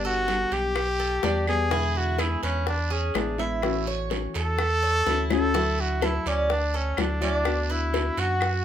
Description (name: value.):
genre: latin, Cuban son and guajira.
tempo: 126 BPM.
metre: 4/4.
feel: straight.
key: D major.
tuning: A4 = 440 Hz.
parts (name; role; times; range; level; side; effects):
warm trumpet; melody; 0.0-8.6 s; C#4 to A4; -27 LUFS; equal; none.
nylon-string guitar; accompaniment; 0.0-8.4 s; B2 to G4; -31 LUFS; left 5 dB; none.
Cuban tres; arpeggios; 0.0-8.6 s; D4 to E5; -31 LUFS; right 3 dB; none.
sub bass with octave; bass; 0.0-8.6 s; G1 to F#2; -28 LUFS; right 1 dB; none.
bongos; percussion; 0.1-8.6 s; none; -30 LUFS; left 6 dB; none.
guiro; percussion; 0.3-8.6 s; none; -37 LUFS; right 6 dB; none.
claves; percussion; 0.8-8.6 s; none; -35 LUFS; left 1 dB; none.
room: light reverb.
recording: minimal, uncompressed stereo recording.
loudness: -22 LUFS.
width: side -10 dB against mid.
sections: 0.0-8.6 A section.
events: drum fill 5.1-5.5.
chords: 0.0 Gadd9; 1.7 E7; 3.6 A6; 5.5 Dadd9; 7.5 Bm/D.